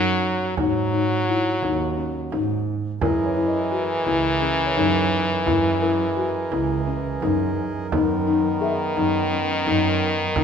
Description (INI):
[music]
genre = contemporary instrumental, chamber music in an uneven meter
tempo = 172 BPM (eighths)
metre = 7/8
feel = straight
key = unclear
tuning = A4 = 440 Hz
[part]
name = stopped French horn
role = second line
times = 0.0-10.4 s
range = D#3 to F#3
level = -24 LUFS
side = left 2 dB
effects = none
[part]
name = buzzing marimba with soft mallets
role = arpeggios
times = 0.0-10.4 s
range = C#4 to E5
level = -24 LUFS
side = left 6 dB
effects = none
[part]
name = muted double bass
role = bass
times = 0.0-10.4 s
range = C#2 to G#2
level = -26 LUFS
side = right 8 dB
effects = none
[part]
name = frame drum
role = percussion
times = 0.2-10.4 s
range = none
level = -29 LUFS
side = right 6 dB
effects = none
[part]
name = hand-pumped harmonium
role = sustained chords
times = 3.0-10.4 s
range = D#3 to D#5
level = -31 LUFS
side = right 5 dB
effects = none
[part]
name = small celesta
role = texture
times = 3.0-10.4 s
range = G#4 to D#5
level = -34 LUFS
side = left 4 dB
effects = none
[sound]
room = moderate recital hall reverb, RT60 1.4 s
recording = minimal, uncompressed stereo recording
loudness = -20 LUFS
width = side -7 dB against mid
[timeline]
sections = 0.0-10.4 A section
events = none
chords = 0.0 D#m/F#; 0.6 G#7sus4; 3.0 F#13; 7.9 Bmaj7/F#